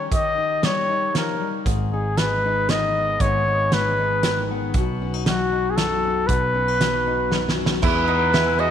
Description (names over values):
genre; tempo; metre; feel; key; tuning
indie folk with a building arrangement; 117 BPM; 3/4; straight; unclear; A4 = 440 Hz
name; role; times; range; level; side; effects
warm trumpet; melody; 0.0-8.7 s; F#4 to D#5; -22 LUFS; left 1 dB; none
fingerpicked steel-string acoustic guitar; accompaniment; 0.0-7.8 s; F#2 to G#4; -28 LUFS; left 9 dB; none
loose indie drum kit; drums; 0.1-8.5 s; crash cymbal, hi-hat, kick drum, ride cymbal, snare drum; -24 LUFS; right 2 dB; none
picked electric bass; bass; 1.7-8.7 s; G#1 to E2; -26 LUFS; right 1 dB; none
bright concert grand piano; accompaniment; 7.8-8.7 s; E2 to B4; -31 LUFS; right 12 dB; none
picked twelve-string acoustic guitar; accompaniment; 7.8-8.7 s; E3 to G#4; -30 LUFS; left 9 dB; none
mellow tonewheel organ; sustained chords; 7.8-8.7 s; B4 to E6; -31 LUFS; right 3 dB; none
mandolin; arpeggios; 7.8-8.7 s; D#4 to F#4; -25 LUFS; right 11 dB; none
room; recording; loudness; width
moderate echo chamber reverb, RT60 2.2 s; 1960s-style stereo with parts hard left and right; -18 LUFS; side -9 dB against mid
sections
0.0-7.8 A section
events
drum fill 7.3-7.8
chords
0.0 D#7; 1.7 G#m; 4.7 Badd9; 7.8 E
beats
| 0.12 0.63 1.15 | 1.66 2.17 2.69 | 3.21 3.72 4.24 | 4.75 5.26 5.78 | 6.29 6.81 7.32 | 7.83 8.34